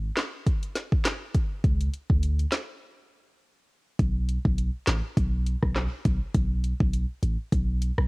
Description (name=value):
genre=dancehall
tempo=102 BPM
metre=4/4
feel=swing 56% on 16ths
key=unclear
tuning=A4 = 440 Hz
part: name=warm 808-style bass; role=bass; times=0.0-8.1 s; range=G#1 to D2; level=-25 LUFS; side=equal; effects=none
part: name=afro-pop drum kit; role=drums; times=0.2-8.1 s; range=handclaps, hi-hat, kick drum, rim click, snare drum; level=-26 LUFS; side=equal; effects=cassette tape
room=little or no reverb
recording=home recording on cassette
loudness=-24 LUFS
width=side -27 dB against mid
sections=0.0-4.0 A section; 4.0-8.1 B section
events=break 2.8-4.0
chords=none